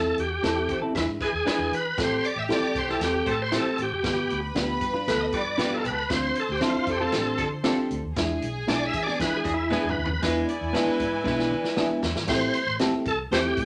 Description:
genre	uptempo 1960s-style soul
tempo	116 BPM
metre	4/4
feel	straight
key	A minor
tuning	A4 = 439 Hz
part	bright tonewheel organ	melody	0.0-13.7 s	E4 to E5	-30 LUFS	equal	overdrive, chorus vibrato, fast rotary speaker
part	reed electric piano	accompaniment	0.0-13.6 s	G#3 to C5	-31 LUFS	equal	none
part	vintage muted fingered electric bass	bass	0.0-13.7 s	F#1 to E3	-37 LUFS	equal	none
part	vintage drum kit	drums	0.2-13.7 s	crash cymbal, hi-hat, kick drum, snare drum, toms	-34 LUFS	equal	none
part	clean electric guitar	stabs	0.4-12.9 s	B3 to C5	-32 LUFS	equal	none
part	warm horn section	second line	0.7-13.4 s	E3 to D5	-34 LUFS	equal	none
part	rich studio string section	second line	2.0-12.3 s	E4 to C6	-35 LUFS	equal	none
room	wet studio reverb, RT60 0.6 s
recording	none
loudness	-26 LUFS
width	mono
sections	0.0-10.2 A section; 10.2-12.3 B section; 12.3-13.7 C section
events	tonewheel organ solo 0.0-10.2; drum fill 9.7-10.2, 11.3-12.3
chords	0.0 Am/E; 1.0 E7; 2.0 Am7; 4.0 G7; 6.1 Dm7; 8.2 E7; 12.3 Am7

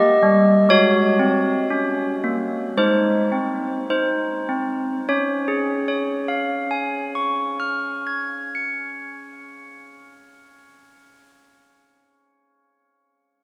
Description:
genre	classical, tune for handbells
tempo	50-62 BPM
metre	4/4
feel	straight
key	Db major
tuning	A4 = 443 Hz
part	handbells	solo	0.0-11.3 s	G3 to Db7	-21 LUFS	equal	none
room	wet cathedral reverb, RT60 6.5 s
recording	recorded in a church or concert hall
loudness	-21 LUFS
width	mono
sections	0.0-5.1 A section; 5.1-9.9 B section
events	slowing down 0.0-5.1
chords	0.0 Gm; 0.7 Ab7sus4; 2.8 Ab; 5.1 Db

